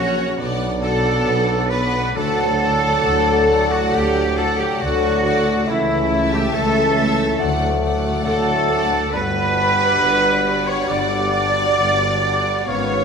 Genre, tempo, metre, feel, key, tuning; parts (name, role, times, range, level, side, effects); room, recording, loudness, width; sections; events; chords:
classical, slow romantic movement for symphony orchestra; 68 BPM; 4/4; rubato; A4 = 440 Hz
rich symphonic violin section; melody; 0.0-13.0 s; E#5 to A5; -30 LUFS; left 5 dB
clear symphonic violin section; second line; 0.0-13.0 s; C#5 to E5; -31 LUFS; left 1 dB
dark clarinet; second line; 0.0-13.0 s; C#5 to F#5; -29 LUFS; left 1 dB
mellow concert flute; second line; 0.0-13.0 s; E5 to D6; -27 LUFS; left 2 dB
warm oboe; second line; 0.0-13.0 s; E4 to D5; -29 LUFS; equal
dark bassoon; accompaniment; 0.0-13.0 s; F#3 to D4; -29 LUFS; equal
warm symphonic viola section; accompaniment; 0.0-13.0 s; G3 to C#4; -28 LUFS; right 1 dB
clear trombone section; sustained chords; 0.0-13.0 s; G2 to B3; -29 LUFS; right 2 dB
warm French horn section; sustained chords; 0.0-13.0 s; C#4 to A4; -29 LUFS; left 4 dB
concert harp; arpeggios; 0.0-13.0 s; G2 to F#5; -28 LUFS; left 9 dB
warm trumpet section; stabs; 0.0-13.0 s; E4 to D5; -24 LUFS; right 1 dB
clear studio double bass section; bass; 0.0-13.0 s; G1 to D2; -26 LUFS; right 2 dB
clear symphonic cello section; bass; 0.0-13.0 s; E4 to D5; -22 LUFS; right 2 dB
clear tuba; bass; 0.0-13.0 s; G1 to D2; -27 LUFS; right 3 dB
wet recital hall reverb, RT60 1.7 s; minimal, uncompressed stereo recording; -16 LUFS; side -6 dB against mid
0.0-13.0 A section
0.4 Bm; 2.1 D; 5.7 A/C#; 7.4 D; 9.1 Gmaj7